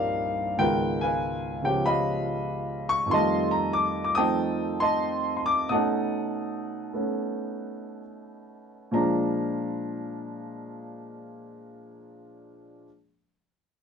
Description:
solo jazz; 65-95 BPM; 4/4; swing 67% on 8ths, rubato; A4 = 439 Hz
warm grand piano; solo; 0.0-12.9 s; C2 to Eb6; -25 LUFS; equal
moderate studio ambience, RT60 0.5 s; band playing live in one room; -24 LUFS; side -6 dB against mid
0.0-8.9 A section; 8.9-12.6 B section
slowing down 3.1-8.9
0.0 Cm11; 0.6 Db13; 3.1 F9; 5.7 B9; 8.9 Bb7
| 0.59 1.22 1.85 2.48 | 3.12 3.75 4.39 5.04 | 5.73 6.45 7.21 8.04 | 8.93 9.85 10.75 11.65

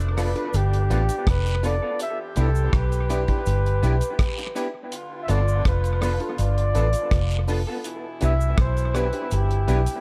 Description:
lovers rock reggae; 82 BPM; 4/4; straight; C major; A4 = 440 Hz
clear saxophone section; second line; 0.0-10.0 s; B2 to G4; -38 LUFS; equal; analog delay
vintage muted fingered electric bass; bass; 0.0-9.9 s; F1 to C2; -24 LUFS; equal
damped 70s drum kit; drums; 0.0-10.0 s; hi-hat, kick drum, rim click; -28 LUFS; equal
cabasa and guiro; percussion; 0.0-10.0 s; -42 LUFS; equal
breathy flugelhorn; melody; 0.1-10.0 s; G4 to E5; -31 LUFS; equal; analog delay
FM electric piano; accompaniment; 0.2-9.8 s; D4 to B4; -35 LUFS; equal; chorus, analog delay
electric guitar through a small old amp; stabs; 0.2-9.8 s; B3 to A4; -36 LUFS; equal; ensemble chorus, analog delay
studio reverb; dark, warm production; -23 LUFS; mono
0.0-10.0 A section
0.0 G9; 2.0 Cmaj7; 4.9 G9; 7.8 Cmaj7
0.54 1.27 | 2.00 2.73 3.46 4.19 | 4.92 5.65 6.39 7.12 | 7.85 8.58 9.31

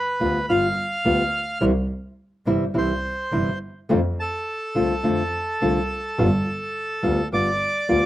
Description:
tango; 106 BPM; 4/4; rubato; F major; A4 = 440 Hz
bandoneon; melody; 0.0-8.1 s; A4 to F6; -24 LUFS; right 1 dB
nylon-string guitar; accompaniment; 0.2-8.1 s; C3 to F4; -22 LUFS; left 1 dB
warm double bass; bass; 0.2-8.1 s; G1 to F2; -26 LUFS; equal
little or no reverb; recorded outdoors, with no room sound; -20 LUFS; side -14 dB against mid
0.0-8.1 A section
0.0 G7; 1.6 C; 3.9 F6; 6.2 G7
0.49 1.05 | 1.61 2.18 2.75 3.32 | 3.90 4.47 5.04 5.61 | 6.18 6.75 7.32 7.88

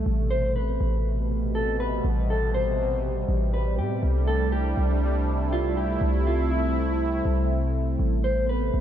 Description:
hip hop, atmospheric cloud-rap; 121 BPM; 4/4; half-time; A4 = 440 Hz
mellow electric guitar; melody; 0.0-8.8 s; E4 to C5; -30 LUFS; left 1 dB; spring reverb, digital delay
sweeping resonant pad; sustained chords; 0.0-8.8 s; B2 to E4; -28 LUFS; right 1 dB; chorus
warm 808-style bass; bass; 0.0-8.8 s; A1 to A2; -25 LUFS; equal
light reverb; -22 LUFS; side -10 dB against mid
0.0-8.8 A section
0.1 Amadd9; 4.0 C6; 8.0 Amadd9
| 0.06 0.56 1.05 1.55 | 2.04 2.54 3.04 3.53 | 4.03 4.52 5.02 5.51 | 6.01 6.51 7.00 7.50 | 8.00 8.49

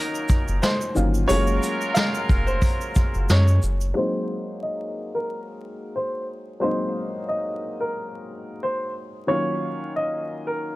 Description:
hip hop, boom-bap hip-hop; 90 BPM; 4/4; swing 56% on 16ths; A4 = 440 Hz
clear upright piano; melody; 0.0-10.8 s; Bb4 to F5; -27 LUFS; equal; high-pass filter, low-pass filter, analog delay
warm upright piano; accompaniment; 0.0-10.8 s; Eb3 to F4; -29 LUFS; left 2 dB; cassette tape, high-pass filter, low-pass filter
clear trumpet section; stabs; 0.0-3.6 s; Gb3 to Bb4; -31 LUFS; right 1 dB; high-pass filter, low-pass filter, plate reverb, analog delay
tube shaker; percussion; 0.1-3.9 s; -40 LUFS; right 6 dB
vintage brush drum kit; drums; 0.3-3.8 s; hi-hat, kick drum, shaker, snare drum; -22 LUFS; equal
soft dub sub bass; bass; 0.5-3.9 s; F1 to Gb2; -20 LUFS; equal
light reverb; vinyl crackle; -21 LUFS; side -18 dB against mid
0.0-4.0 A section; 4.0-10.8 B section
filter sweep 4.0-10.8
0.0 Ebm7; 1.3 Gbmaj7; 4.0 Ab7; 9.3 Ebm7
0.62 | 1.29 1.96 2.62 3.29 | 3.96 4.62 5.29 5.96 | 6.62 7.29 7.96 8.62 | 9.29 9.96 10.62

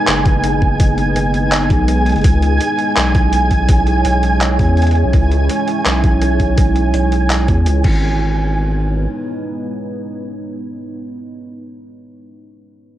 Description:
half-time drum and bass; 166 BPM; 4/4; swing 54% on 16ths, half-time; G# minor; A4 = 438 Hz
deep dark ambient pad; sustained chords; 0.0-10.8 s; G#3 to C#5; -21 LUFS; right 1 dB; chorus, built-in reverb, sidechain pumping, cassette tape
flickering grainy texture; texture; 0.0-8.0 s; G#5; -20 LUFS; right 2 dB; built-in reverb, cassette tape
saturated sub bass; bass; 0.1-9.1 s; F#1 to E2; -16 LUFS; equal
boom bap sampler-style drum kit; drums; 0.1-7.9 s; crash cymbal, handclaps, hi-hat; -21 LUFS; equal; studio ambience, cassette tape
electronic kick drum; drums; 0.3-7.9 s; -14 LUFS; equal; overdrive, studio ambience, cassette tape
light reverb; home recording on cassette; -12 LUFS; side -13 dB against mid
0.0-8.0 A section; 8.0-10.9 B section
filter sweep on sub bass 0.0-8.0
0.0 G#m; 2.2 C#m; 7.8 G#m
0.07 0.43 | 0.80 1.16 1.52 1.88 | 2.24 2.60 2.96 3.33 | 3.69 4.05 4.41 4.77 | 5.13 5.50 5.86 6.22 | 6.58 6.94 7.30 7.66 | 8.03 8.39 8.75 9.11 | 9.47 9.83 10.19 10.56

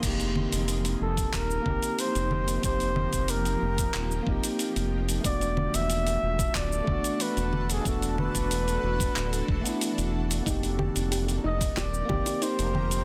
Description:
sunset chillout; 92 BPM; 4/4; straight; F mixolydian; A4 = 440 Hz
tine electric piano; accompaniment; 0.0-13.0 s; A3 to G4; -35 LUFS; equal; tape echo
shimmering ambient pad; sustained chords; 0.0-13.0 s; E3 to Bb4; -40 LUFS; equal; chorus, built-in reverb, phaser
round analog bass; bass; 0.0-13.0 s; D1 to F1; -32 LUFS; equal
dusty soul sampler-style drum kit; drums; 0.0-13.0 s; cabasa, congas, crash cymbal, handclaps, hi-hat; -35 LUFS; equal
electronic kick drum; drums; 0.0-12.2 s; -34 LUFS; equal
breathy flugelhorn; melody; 1.0-13.0 s; Ab4 to E5; -34 LUFS; equal; tape echo
soft round pluck; arpeggios; 10.5-12.9 s; Eb4 to G4; -39 LUFS; equal; chorus, tape echo
bongos; percussion; 11.8-12.4 s; -40 LUFS; equal
light reverb, digital ambience; dense, heavily limited modern master; -28 LUFS; mono
0.0-13.0 A section
0.0 F9sus4; 5.2 E9sus4; 10.5 F9sus4
| 0.03 0.68 1.33 1.99 | 2.64 3.29 3.94 4.59 | 5.25 5.90 6.55 7.20 | 7.86 8.51 9.16 9.81 | 10.46 11.12 11.77 12.42

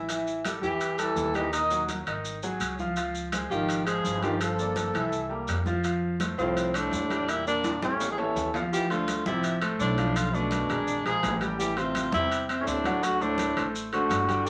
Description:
Afro-Cuban jazz; 167 BPM; 4/4; straight; D minor from 8.7 s; A4 = 439 Hz
clear grand piano; accompaniment; 0.0-14.5 s; Eb3 to G5; -34 LUFS; equal
upright bass; bass; 0.0-14.5 s; G1 to F2; -38 LUFS; equal
congas; percussion; 0.1-14.5 s; -40 LUFS; equal
maracas; percussion; 0.1-14.5 s; -43 LUFS; equal
timbales; percussion; 0.1-14.5 s; -37 LUFS; equal
breathy tenor saxophone; melody; 0.6-14.5 s; C4 to A4; -31 LUFS; equal
growling trombone; second line; 0.6-14.5 s; A2 to F3; -36 LUFS; equal
wet studio reverb, RT60 0.5 s; vinyl crackle; -28 LUFS; mono
0.0-8.7 A section; 8.7-14.5 B section
drum fill 7.6-8.7
0.1 A5; 1.5 Ebm; 2.2 Ab5; 3.0 Dbmaj9; 4.4 Gm9; 5.1 C7; 5.8 Fmaj7; 7.3 Em7b5; 8.0 A7; 8.7 Dm11; 10.2 Bm7b5; 10.9 Bb5; 11.6 Am7; 13.0 D7
| 0.09 0.45 0.81 1.17 | 1.53 1.89 2.25 2.61 | 2.97 3.33 3.69 4.04 | 4.41 4.76 5.12 5.48 | 5.84 6.20 6.56 6.92 | 7.28 7.64 8.00 8.36 | 8.72 9.08 9.44 9.80 | 10.15 10.51 10.87 11.23 | 11.59 11.95 12.31 12.67 | 13.03 13.38 13.74 14.10 | 14.46

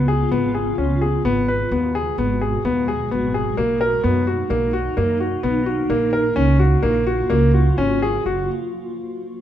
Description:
contemporary instrumental, chamber music in an uneven meter; 129 BPM; 5/4; straight; F# major; A4 = 439 Hz
granular cloud pad; sustained chords; 0.0-8.5 s; B2 to F#4; -25 LUFS; left 1 dB; built-in reverb
clear concert grand piano; arpeggios; 0.0-8.5 s; A#3 to B4; -20 LUFS; left 2 dB
upright bass; bass; 0.0-8.5 s; F#1 to F#2; -21 LUFS; right 2 dB
light reverb; minimal, uncompressed stereo recording; -17 LUFS; side -11 dB against mid
0.0-8.3 A section; 8.3-9.4 B section
0.0 C#7; 1.3 G#m7; 3.6 Bmaj7; 5.9 F#maj7/A#; 8.3 F#maj7
0.32 0.79 | 1.25 1.72 2.19 2.65 3.12 | 3.58 4.05 4.51 4.97 5.43 | 5.90 6.37 6.84 7.31 7.79 | 8.26

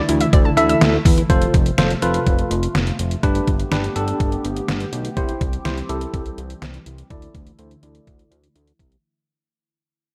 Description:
synth-pop; 124 BPM; 4/4; straight; A4 = 441 Hz
phased analog pad; sustained chords; 0.0-9.0 s; C3 to G4; -30 LUFS; equal; phaser, chorus, low-pass filter
soft round pluck; arpeggios; 0.0-1.2 s; D3 to E6; -26 LUFS; equal; chorus, digital delay
chorused synth bass; bass; 0.1-9.0 s; F1 to E2; -25 LUFS; equal
detuned 8-bit digital drum machine; drums; 0.1-9.0 s; hi-hat, kick drum, snare drum; -21 LUFS; equal; overdrive
bell-like tine electric piano; accompaniment; 0.6-8.3 s; D4 to E5; -24 LUFS; equal; low-pass filter
light reverb, digital ambience; -19 LUFS; mono
0.0-1.3 A section; 1.3-9.0 B section
fade-out 1.3-9.0; filter sweep 1.3-9.0
0.0 Dsus2; 1.3 F; 3.2 Gadd9; 5.2 C; 7.1 Dsus2
0.33 0.81 | 1.30 1.78 2.27 2.75 | 3.23 3.72 4.20 4.68 | 5.17 5.65 6.14 6.62 | 7.10 7.59 8.07 8.55

